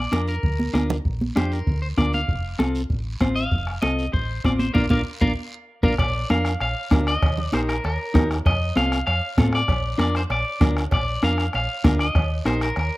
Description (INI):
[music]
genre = latin, cumbia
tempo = 195 BPM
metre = 4/4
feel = straight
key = Bb major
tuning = A4 = 441 Hz
[part]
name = clean electric guitar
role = melody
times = 0.0-13.0 s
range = Bb4 to F5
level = -27 LUFS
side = left 1 dB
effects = spring reverb, slapback echo
[part]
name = hollow-body short-scale fingered electric bass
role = bass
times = 0.0-12.9 s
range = F1 to A2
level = -25 LUFS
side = equal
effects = none
[part]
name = clean electric guitar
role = accompaniment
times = 0.1-12.7 s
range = C4 to C5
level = -25 LUFS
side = left 1 dB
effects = none
[part]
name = bombo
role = percussion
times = 0.1-12.9 s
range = none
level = -24 LUFS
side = equal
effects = none
[part]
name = congas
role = percussion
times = 0.1-12.9 s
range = none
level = -26 LUFS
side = right 1 dB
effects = none
[part]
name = guiro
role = percussion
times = 0.1-13.0 s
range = none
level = -42 LUFS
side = right 3 dB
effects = none
[part]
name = cowbell and timbales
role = percussion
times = 6.0-12.9 s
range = none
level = -36 LUFS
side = right 4 dB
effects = none
[sound]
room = light reverb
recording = rough home demo mix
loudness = -20 LUFS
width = side -19 dB against mid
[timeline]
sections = 0.0-6.0 A section; 6.0-13.0 B section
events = drum fill 0.6-1.1, 5.2-6.0; band accent 4.8-6.0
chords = 0.0 Bb; 2.3 F; 4.8 Bb; 7.2 Eb; 8.5 F7; 9.7 Bb; 12.2 Eb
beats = 0.12 0.43 0.74 | 1.05 1.36 1.67 1.98 | 2.29 2.60 2.91 3.21 | 3.52 3.83 4.14 4.45 | 4.76 5.07 5.38 5.68 | 5.99 6.30 6.61 6.92 | 7.22 7.53 7.84 8.15 | 8.46 8.77 9.07 9.38 | 9.69 10.00 10.31 10.61 | 10.92 11.23 11.54 11.85 | 12.15 12.46 12.77